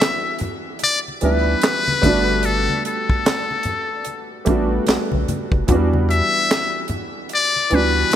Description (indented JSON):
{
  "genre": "R&B, neo-soul",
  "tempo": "74 BPM",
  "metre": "4/4",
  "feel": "swing 62% on 16ths",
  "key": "E minor",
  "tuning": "A4 = 440 Hz",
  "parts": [
    { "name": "trumpet with metal mute", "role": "melody", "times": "0.0-8.2 s", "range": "A4 to E5", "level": "-20 LUFS", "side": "left 4 dB", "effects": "none" },
    { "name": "warm baby grand piano", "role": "accompaniment", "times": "0.0-8.2 s", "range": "E3 to F#4", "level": "-22 LUFS", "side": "right 2 dB", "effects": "analog chorus" },
    { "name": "tight funk drum kit", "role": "drums", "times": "0.0-8.2 s", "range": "handclaps, hi-hat, kick drum, snare drum", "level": "-22 LUFS", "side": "right 1 dB", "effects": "none" },
    { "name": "congas", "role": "percussion", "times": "0.0-8.2 s", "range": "none", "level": "-28 LUFS", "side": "left 2 dB", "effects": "none" },
    { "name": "rubbery square bass", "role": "bass", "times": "1.2-8.0 s", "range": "F#1 to E2", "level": "-21 LUFS", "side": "equal", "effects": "none" }
  ],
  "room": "light reverb, studio ambience",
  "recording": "bright 1980s-style digital production",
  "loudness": "-17 LUFS",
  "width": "side -10 dB against mid",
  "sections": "0.0-8.2 A section",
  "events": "none",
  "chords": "0.0 Em7; 2.0 Gmaj9; 5.7 Em7",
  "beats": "0.01 0.82 1.63 | 2.44 3.25 4.06 4.87 | 5.68 6.49 7.30 8.12"
}